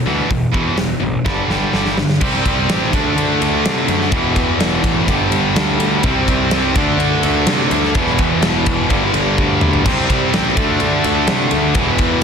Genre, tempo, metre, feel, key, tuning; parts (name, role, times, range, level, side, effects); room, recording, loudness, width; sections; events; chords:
hard rock; 126 BPM; 4/4; straight; A4 = 439 Hz
overdriven electric guitar; riff; 0.0-12.2 s; E2 to D4; -19 LUFS; right 12 dB
tight distorted guitar; riff; 0.0-12.2 s; E2 to D4; -19 LUFS; left 11 dB; distortion
fuzz picked electric bass; bass; 0.1-12.2 s; E1 to D3; -21 LUFS; equal; overdrive
big rock drum kit; drums; 0.3-12.1 s; crash cymbal, hi-hat, kick drum, ride cymbal, snare drum, toms; -19 LUFS; equal
light reverb; dense, heavily limited modern master; -13 LUFS; side -6 dB against mid
0.0-2.2 A section; 2.2-12.2 B section
drum fill 1.3-2.2, 9.4-9.9
0.0 E5; 1.3 G5; 2.2 C5; 2.9 D; 4.1 E5; 5.1 G5; 6.0 C5; 6.8 D5; 7.9 E5; 8.9 G5; 9.9 C5; 10.6 D5